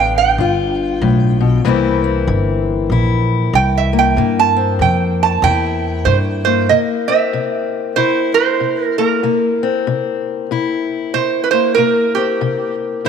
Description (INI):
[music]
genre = acoustic country blues, solo or duo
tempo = 95 BPM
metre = 4/4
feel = swing 61% on 8ths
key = C mixolydian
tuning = A4 = 439 Hz
[part]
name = metal-body resonator slide guitar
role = melody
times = 0.0-13.1 s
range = G4 to A5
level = -16 LUFS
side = right 8 dB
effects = none
[part]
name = fingerpicked steel-string acoustic guitar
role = accompaniment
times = 0.0-13.1 s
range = G2 to F4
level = -18 LUFS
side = left 8 dB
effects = none
[part]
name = upright bass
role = bass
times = 0.0-6.7 s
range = G1 to G2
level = -17 LUFS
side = equal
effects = none
[sound]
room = moderate plate reverb, RT60 2.4 s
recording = 1960s-style stereo with parts hard left and right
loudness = -13 LUFS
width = side -7 dB against mid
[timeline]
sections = 0.0-6.7 A section; 6.7-13.1 B section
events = resonator guitar played with a steel bar solo 0.0-6.7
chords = 0.0 G7; 1.6 C7